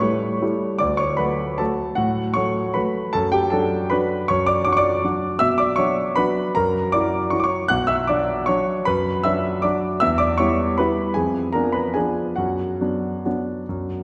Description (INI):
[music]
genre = classical, piano waltz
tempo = 133-166 BPM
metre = 3/4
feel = rubato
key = D major, B minor from 5.4 s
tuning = A4 = 440 Hz
[part]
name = clear concert grand piano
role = solo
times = 0.0-14.0 s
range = B1 to F#6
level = -21 LUFS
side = equal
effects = none
[sound]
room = wet concert hall reverb, RT60 2.3 s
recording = recorded in a church or concert hall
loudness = -21 LUFS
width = mono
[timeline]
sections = 0.0-14.0 A section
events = none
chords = 0.0 A7; 0.8 D; 3.1 D/F#; 5.4 Bm; 6.6 F#7; 7.7 Bm; 10.0 Em; 11.2 Fdim7; 12.4 Bm/F#